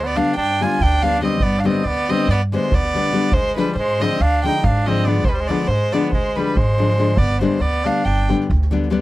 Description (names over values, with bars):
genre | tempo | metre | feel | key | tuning
balkan folk, Balkan wedding band | 281 BPM (eighths) | 9/8 | straight | unclear | A4 = 441 Hz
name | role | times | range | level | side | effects
warm violin | melody | 0.0-8.3 s | B4 to Ab5 | -21 LUFS | right 1 dB | none
clear trumpet | second line | 0.0-8.3 s | G3 to F4 | -25 LUFS | right 2 dB | none
upright bass | bass | 0.0-9.0 s | G1 to Ab2 | -20 LUFS | right 1 dB | none
soft-mallet drum kit | percussion | 0.1-9.0 s | kick drum, snare drum | -23 LUFS | right 1 dB | none
nylon-string guitar | accompaniment | 0.2-9.0 s | D3 to D4 | -21 LUFS | left 4 dB | none
room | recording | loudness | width
little or no reverb | dry, close 1970s-style studio recording | -16 LUFS | side -16 dB against mid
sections
0.0-9.0 A section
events
none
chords
0.0 G; 3.3 Ddim; 7.2 G